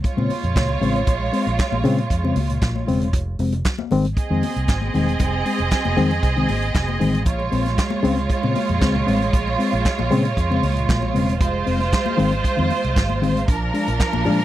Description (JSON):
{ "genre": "disco", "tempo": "116 BPM", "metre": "4/4", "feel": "straight", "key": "Bb minor", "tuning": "A4 = 437 Hz", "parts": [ { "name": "rich studio string section", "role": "second line", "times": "0.0-14.4 s", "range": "F3 to Eb5", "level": "-23 LUFS", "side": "right 4 dB", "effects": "none" }, { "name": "vintage muted fingered electric bass", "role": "bass", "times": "0.0-14.4 s", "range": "E1 to Bb2", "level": "-23 LUFS", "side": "right 1 dB", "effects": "none" }, { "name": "vintage drum kit", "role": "drums", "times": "0.0-14.4 s", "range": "handclaps, hi-hat, kick drum, snare drum", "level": "-23 LUFS", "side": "right 1 dB", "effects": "none" }, { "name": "congas", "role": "percussion", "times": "0.0-14.4 s", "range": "none", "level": "-31 LUFS", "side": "left 8 dB", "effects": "none" }, { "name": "reed electric piano", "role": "accompaniment", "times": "0.2-14.4 s", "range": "Bb2 to D4", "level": "-21 LUFS", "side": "left 3 dB", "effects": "none" } ], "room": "little or no reverb", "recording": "dry, close 1970s-style studio recording", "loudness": "-18 LUFS", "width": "side -13 dB against mid", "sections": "0.0-14.4 A section", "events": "none", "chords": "0.0 Bbm9; 3.1 Fm7; 7.3 Bbm9; 11.4 Fm7; 13.5 Bb7" }